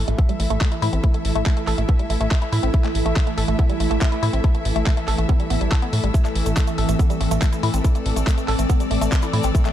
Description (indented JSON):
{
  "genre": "psychedelic trance",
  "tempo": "141 BPM",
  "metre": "4/4",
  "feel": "straight",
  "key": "A minor",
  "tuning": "A4 = 441 Hz",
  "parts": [
    { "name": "evolving wavetable pad", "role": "sustained chords", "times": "0.0-9.7 s", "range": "E3 to E4", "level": "-27 LUFS", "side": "right 1 dB", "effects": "chorus, built-in reverb, sidechain pumping" },
    { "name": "woody wave-folded pluck", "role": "riff", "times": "0.0-9.7 s", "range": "G3 to A4", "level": "-27 LUFS", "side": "moving between left 10 dB and right 6 dB", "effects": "chorus, auto-pan, sidechain pumping, digital delay" },
    { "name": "tight sequencer bass", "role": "bass", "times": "0.0-9.5 s", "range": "A1 to A2", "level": "-21 LUFS", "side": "equal", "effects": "none" },
    { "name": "rich symphonic string section", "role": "texture", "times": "0.0-9.7 s", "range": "A3 to E6", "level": "-29 LUFS", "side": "left 2 dB", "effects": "sidechain pumping" },
    { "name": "garage drum kit", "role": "drums", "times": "0.1-9.7 s", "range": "handclaps, hi-hat", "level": "-30 LUFS", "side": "equal", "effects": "none" },
    { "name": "electronic kick drum", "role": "drums", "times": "0.2-9.6 s", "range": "none", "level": "-18 LUFS", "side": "equal", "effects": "none" },
    { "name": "cabasa", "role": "percussion", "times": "6.1-9.7 s", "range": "none", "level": "-37 LUFS", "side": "right 4 dB", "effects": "none" },
    { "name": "riser", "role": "sound effects", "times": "9.5-9.7 s", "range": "none", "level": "barely audible", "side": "none", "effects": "none" }
  ],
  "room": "digital ambience",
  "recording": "dark, warm production",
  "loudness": "-18 LUFS",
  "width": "side -11 dB against mid",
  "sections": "0.0-9.7 A section",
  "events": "none",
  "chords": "0.0 A5"
}